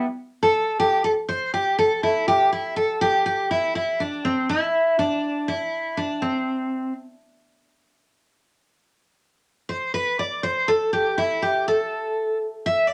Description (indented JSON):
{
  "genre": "indie pop",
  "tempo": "81 BPM",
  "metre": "4/4",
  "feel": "swing 55% on 16ths",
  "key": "unclear",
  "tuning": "A4 = 440 Hz",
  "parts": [
    { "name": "picked steel-string acoustic guitar", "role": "solo", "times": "0.0-12.9 s", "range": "C4 to E5", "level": "-23 LUFS", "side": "equal", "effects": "vibrato effect" }
  ],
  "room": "wet studio ambience, RT60 0.5 s",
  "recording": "none",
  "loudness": "-23 LUFS",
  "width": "mono",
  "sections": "0.0-12.9 A section",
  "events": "steel-string acoustic guitar solo 0.0-12.9",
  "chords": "none"
}